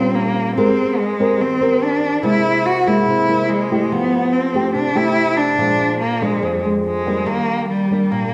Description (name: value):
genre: bossa nova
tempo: 143 BPM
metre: 4/4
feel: straight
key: unclear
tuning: A4 = 439 Hz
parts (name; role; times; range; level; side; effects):
- rich cello; melody; 0.0-8.3 s; G3 to F#4; -20 LUFS; equal; none
- nylon-string guitar; accompaniment; 0.0-8.3 s; F2 to Bb4; -21 LUFS; equal; none
room: wet large studio reverb, RT60 1.3 s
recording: heard from further back in the room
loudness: -17 LUFS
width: mono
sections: 0.0-8.3 A section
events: none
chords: 0.0 Eb9 (rootless); 0.6 Abmaj9; 2.2 C7b13; 3.9 Fmaj9; 5.6 Bb7; 7.3 Ebmaj7